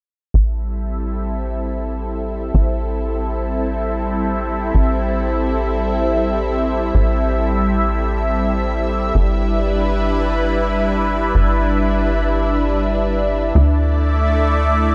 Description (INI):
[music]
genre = synthwave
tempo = free time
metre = none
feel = none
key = A minor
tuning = A4 = 439 Hz
[part]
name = lush unison pad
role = sustained chords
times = 0.7-14.9 s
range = G3 to E5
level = -21 LUFS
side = equal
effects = chorus, phaser, shimmer reverb
[part]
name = tight sequencer bass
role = bass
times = 0.3-14.9 s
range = G1 to D2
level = -22 LUFS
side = equal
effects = none
[sound]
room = moderate lush hall reverb, RT60 2.7 s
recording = none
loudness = -19 LUFS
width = mono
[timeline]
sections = 0.3-14.9 A section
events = filter sweep on analog synth bass 0.3-14.9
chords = 0.3 Am7; 9.2 G6; 13.6 Dsus2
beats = free time